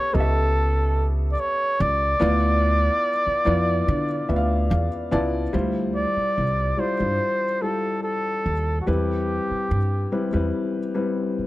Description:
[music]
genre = lush 1970s-style soul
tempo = 72 BPM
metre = 4/4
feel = straight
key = D dorian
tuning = A4 = 440 Hz
[part]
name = clear flugelhorn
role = melody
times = 0.0-10.5 s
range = F#4 to D5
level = -24 LUFS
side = equal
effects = none
[part]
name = dark grand piano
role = accompaniment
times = 0.0-11.5 s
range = G3 to A5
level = -26 LUFS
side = left 2 dB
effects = none
[part]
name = upright bass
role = bass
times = 0.1-11.4 s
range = C2 to D3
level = -23 LUFS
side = right 1 dB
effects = none
[sound]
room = light reverb, studio ambience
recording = none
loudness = -20 LUFS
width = side -17 dB against mid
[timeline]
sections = 0.0-5.5 A section; 5.5-11.5 B section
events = grand piano fill 4.3-5.5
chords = 0.0 A9; 2.2 Dm69; 5.5 Dm11; 8.9 Cmaj7/E

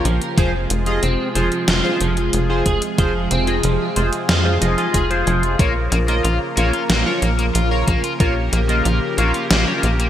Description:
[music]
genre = synthwave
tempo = 92 BPM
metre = 4/4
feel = straight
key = F minor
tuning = A4 = 439 Hz
[part]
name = phased analog pad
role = sustained chords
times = 0.0-10.1 s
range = C3 to Bb4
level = -23 LUFS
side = equal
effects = phaser, chorus, sidechain pumping
[part]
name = tight sequencer bass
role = bass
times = 0.0-10.1 s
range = F1 to F2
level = -20 LUFS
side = equal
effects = sidechain pumping
[part]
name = electric guitar at the edge of break-up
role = arpeggios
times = 0.1-5.4 s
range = F3 to Ab4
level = -24 LUFS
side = right 3 dB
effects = ensemble chorus, digital delay
[part]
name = gated 80s digital drum machine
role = drums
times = 0.1-10.1 s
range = hi-hat, snare drum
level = -21 LUFS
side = equal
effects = gated reverb, gated reverb snare, overdrive
[part]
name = chorused polysynth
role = stabs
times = 0.4-9.8 s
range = F4 to Eb5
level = -23 LUFS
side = left 1 dB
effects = phaser, digital delay
[part]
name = electronic kick drum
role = drums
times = 0.4-8.3 s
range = none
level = -18 LUFS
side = equal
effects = overdrive
[part]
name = crunchy overdriven guitar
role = riff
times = 5.6-10.0 s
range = Bb3 to F4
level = -25 LUFS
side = left 2 dB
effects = wide subtle chorus, digital delay
[sound]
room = light reverb, digital ambience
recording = bright 1980s-style digital production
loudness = -16 LUFS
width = side -11 dB against mid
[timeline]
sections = 0.0-10.1 A section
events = none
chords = 0.4 Fm; 5.6 Bbm

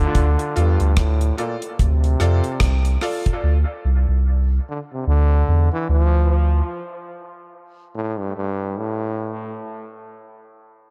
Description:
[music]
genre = dub reggae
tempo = 73 BPM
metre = 4/4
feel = swing 59% on 16ths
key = unclear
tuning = A4 = 440 Hz
[part]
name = clear trombone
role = melody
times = 0.0-9.6 s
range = G2 to F3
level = -28 LUFS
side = equal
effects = dub echo
[part]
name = soft dub sub bass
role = bass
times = 0.0-6.6 s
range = C2 to F2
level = -19 LUFS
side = equal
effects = none
[part]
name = deep reggae drum kit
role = drums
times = 0.1-3.4 s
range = hi-hat, kick drum, rim click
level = -24 LUFS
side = equal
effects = none
[part]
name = clear grand piano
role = stabs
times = 0.6-3.2 s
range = F4 to D5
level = -32 LUFS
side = equal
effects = dub echo
[sound]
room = little or no reverb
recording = echo-heavy mix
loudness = -20 LUFS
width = mono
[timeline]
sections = 0.0-10.0 A section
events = none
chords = 0.0 Dm; 3.4 Csus2; 6.7 N.C.

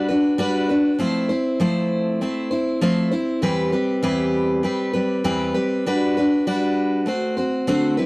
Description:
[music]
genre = rock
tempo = 99 BPM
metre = 4/4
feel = straight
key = unclear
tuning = A4 = 439 Hz
[part]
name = picked steel-string acoustic guitar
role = solo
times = 0.0-8.1 s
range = E2 to C5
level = -18 LUFS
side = equal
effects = none
[sound]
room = light reverb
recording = dry, close 1970s-style studio recording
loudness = -18 LUFS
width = side -25 dB against mid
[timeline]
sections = 0.0-8.1 A section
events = none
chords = 0.0 Gmaj7; 1.0 Fmaj7; 3.4 Cmaj7/E; 5.9 Gmaj7; 7.1 D7

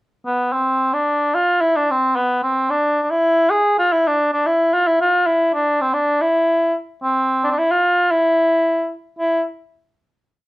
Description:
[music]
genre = Arabic maqam ensemble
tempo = 111 BPM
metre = 4/4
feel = straight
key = E maqam hijaz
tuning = A4 = 440 Hz
[part]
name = mellow cor anglais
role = solo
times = 0.3-9.4 s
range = B3 to G#4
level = -15 LUFS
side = equal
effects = none
[sound]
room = moderate studio reverb, RT60 0.6 s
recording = worn, warbling old tape, cassette tape, warbly pitch drift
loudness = -15 LUFS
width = side -19 dB against mid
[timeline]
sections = 0.0-0.5 pickup bar; 0.5-9.2 A section; 9.2-10.5 final note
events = none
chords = none

